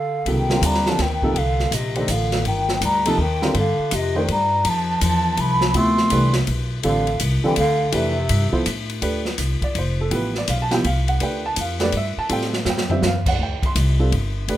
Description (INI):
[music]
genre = modal jazz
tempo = 165 BPM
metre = 3/4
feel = swing 65% on 8ths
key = C dorian, D dorian from 9.0 s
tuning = A4 = 439 Hz
[part]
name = breathy mellow jazz flute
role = melody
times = 0.0-8.6 s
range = Eb5 to C6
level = -23 LUFS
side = right 1 dB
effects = none
[part]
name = warm bass clarinet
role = second line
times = 0.0-8.6 s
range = C3 to A3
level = -24 LUFS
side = left 2 dB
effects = none
[part]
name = warm baby grand piano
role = accompaniment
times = 0.3-14.6 s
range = C3 to C6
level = -24 LUFS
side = right 2 dB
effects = none
[part]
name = upright bass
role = bass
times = 0.3-14.6 s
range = F1 to A2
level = -23 LUFS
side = equal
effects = none
[part]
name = open jazz drum kit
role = drums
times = 0.3-14.6 s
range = crash cymbal, hi-hat, kick drum, ride cymbal, snare drum, toms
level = -25 LUFS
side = left 1 dB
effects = none
[sound]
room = little or no reverb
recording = rough home demo mix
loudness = -18 LUFS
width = side -13 dB against mid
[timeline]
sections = 0.3-9.0 A section; 9.0-14.6 B section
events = break 0.0; drum fill 12.7-13.0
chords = 0.3 Cm9; 4.7 Dm9